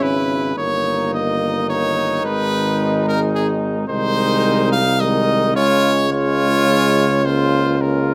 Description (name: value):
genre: classical, brass quintet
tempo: 108 BPM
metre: 3/4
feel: rubato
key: G# minor, Ab major from 3.9 s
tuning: A4 = 439 Hz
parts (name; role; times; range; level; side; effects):
- clear trumpet; melody; 0.0-8.1 s; G#4 to F5; -22 LUFS; equal; none
- warm trumpet; second line; 0.0-8.1 s; D#4 to F4; -28 LUFS; equal; none
- clear trombone; accompaniment; 0.0-8.1 s; Db3 to Eb3; -28 LUFS; equal; none
- mellow French horn; accompaniment; 0.0-8.1 s; Ab3 to C#4; -25 LUFS; equal; none
- warm tuba; bass; 0.0-8.1 s; G1 to Db2; -23 LUFS; equal; none
room: moderate large studio reverb, RT60 0.8 s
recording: none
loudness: -18 LUFS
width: mono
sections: 0.0-8.1 A section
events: none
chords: 0.0 C#m/G#; 0.6 D#7/G; 2.2 G#m; 3.9 Ab/C; 5.6 Db; 7.2 Bbm/Db